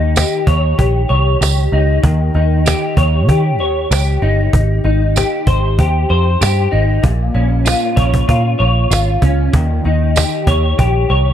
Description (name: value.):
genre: indie pop, bedroom pop.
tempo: 96 BPM.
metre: 4/4.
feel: straight.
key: unclear.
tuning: A4 = 440 Hz.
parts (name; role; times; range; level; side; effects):
electric guitar through a small old amp; accompaniment; 0.0-11.3 s; Bb2 to Db5; -16 LUFS; left 2 dB; ensemble chorus, vibrato effect.
vintage muted picked electric bass; bass; 0.0-11.3 s; G1 to Eb3; -14 LUFS; equal; none.
cajon; drums; 0.2-11.2 s; none; -17 LUFS; equal; none.
tambourine; percussion; 0.2-10.3 s; none; -23 LUFS; right 17 dB; none.
room: small room ambience.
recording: dark, warm production.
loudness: -12 LUFS.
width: side -10 dB against mid.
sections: 0.0-11.3 A section.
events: none.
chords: 0.0 Eb7; 4.5 Abmaj7; 7.0 Bbm; 9.5 Eb9.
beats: 0.16 0.79 1.41 | 2.04 2.66 3.29 3.91 | 4.54 5.16 5.79 6.41 | 7.04 7.66 8.29 8.91 | 9.54 10.16 10.79.